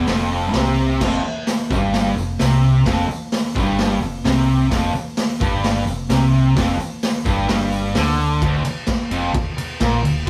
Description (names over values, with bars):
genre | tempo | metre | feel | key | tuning
garage rock duo or trio | 130 BPM | 4/4 | straight | unclear | A4 = 441 Hz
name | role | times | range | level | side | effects
fuzz guitar | riff | 0.0-10.3 s | D2 to D3 | -21 LUFS | equal | distortion
vintage muted fingered electric bass | bass | 0.0-10.3 s | D1 to D2 | -27 LUFS | equal | tube saturation
raw garage drum kit | drums | 0.1-10.3 s | crash cymbal, hi-hat, kick drum, ride cymbal, snare drum | -24 LUFS | equal | none
tambourine | percussion | 1.0-8.3 s | none | -43 LUFS | equal | none
room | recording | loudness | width
light reverb | band playing live in one room | -19 LUFS | mono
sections
0.0-8.4 A section; 8.4-10.3 B section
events
none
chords
0.0 N.C.; 1.0 F5; 8.4 Dm